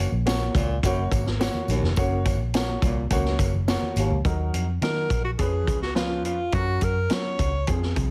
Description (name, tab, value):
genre	uptempo 1960s-style soul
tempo	105 BPM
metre	4/4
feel	straight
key	unclear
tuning	A4 = 441 Hz
part	warm upright piano	accompaniment	0.0-8.1 s	F3 to Db5	-33 LUFS	equal	none
part	vintage muted fingered electric bass	bass	0.0-8.1 s	F1 to Gb3	-28 LUFS	equal	none
part	vintage drum kit	drums	0.3-8.1 s	hi-hat, kick drum, snare drum	-29 LUFS	equal	none
part	tambourine	percussion	0.3-4.1 s	none	-47 LUFS	equal	none
part	congas	percussion	0.4-4.2 s	none	-39 LUFS	equal	none
part	breathy baritone saxophone	riff	0.6-4.2 s	Eb2 to Bb2	-32 LUFS	equal	none
part	bright alto saxophone	melody	4.8-7.7 s	F4 to Db5	-30 LUFS	equal	none
room	light reverb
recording	heavily compressed radio sound, multiband compression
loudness	-24 LUFS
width	mono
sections	0.0-4.2 A section; 4.2-8.1 B section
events	none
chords	0.0 Gb; 4.2 Ebm; 5.4 Db7; 6.5 Gb